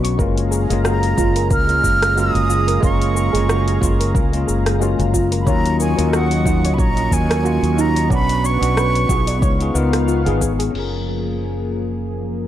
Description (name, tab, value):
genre	sunset chillout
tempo	91 BPM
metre	4/4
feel	swing 55% on 16ths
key	F# major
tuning	A4 = 440 Hz
part	bell-like tine electric piano	accompaniment	0.0-12.5 s	F#3 to A#4	-22 LUFS	moving between left 8 dB and right 8 dB	auto-pan, tape echo
part	lush unison pad	sustained chords	0.0-12.5 s	E#3 to C#6	-27 LUFS	equal	chorus
part	soft round pluck	arpeggios	0.0-10.7 s	D#4 to C#6	-26 LUFS	right 3 dB	wide subtle chorus, tape echo
part	mellow fretless electric bass	bass	0.0-12.5 s	F#1 to D#2	-19 LUFS	equal	lush chorus
part	deep house drum kit	drums	0.0-10.9 s	cabasa, crash cymbal, hi-hat, rim click	-26 LUFS	equal	overdrive, low-pass filter on perc, low-pass filter on hats, low-pass filter on snare, low-pass filter on cymbals, low-pass filter on room
part	electronic kick drum	drums	0.2-10.6 s	none	-20 LUFS	equal	overdrive
part	breathy concert flute	melody	0.9-9.8 s	F#5 to E#6	-22 LUFS	right 1 dB	tape echo
room	light reverb, digital ambience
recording	dark, warm production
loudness	-15 LUFS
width	side -12 dB against mid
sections	0.0-10.7 A section; 10.7-12.5 B section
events	filter sweep on drum 10.7-12.5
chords	0.2 F#maj9; 5.5 D#m7; 8.1 Bmadd9; 9.4 C#7; 10.7 F#maj9